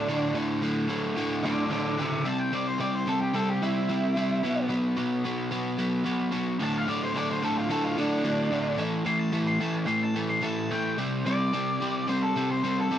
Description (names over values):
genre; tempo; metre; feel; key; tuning
rock; 110 BPM; 4/4; straight; D mixolydian; A4 = 440 Hz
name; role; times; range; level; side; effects
octave-fuzz lead guitar; melody; 0.0-13.0 s; D4 to C6; -30 LUFS; equal; distortion, cassette tape, tape echo
overdriven electric guitar; riff; 0.0-13.0 s; D2 to C4; -26 LUFS; equal; cassette tape
room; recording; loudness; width
light reverb; home recording on cassette; -25 LUFS; side -10 dB against mid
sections
0.0-11.0 A section; 11.0-13.0 B section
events
lead electric guitar solo 11.0-13.0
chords
0.0 D5; 2.2 C; 4.4 B5; 6.6 D5; 8.8 A5; 11.0 C5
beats
| 0.07 0.61 1.16 1.70 | 2.25 2.79 3.33 3.88 | 4.42 4.97 5.51 6.05 | 6.60 7.14 7.69 8.24 | 8.78 9.33 9.88 10.43 | 10.98 11.52 12.07 12.62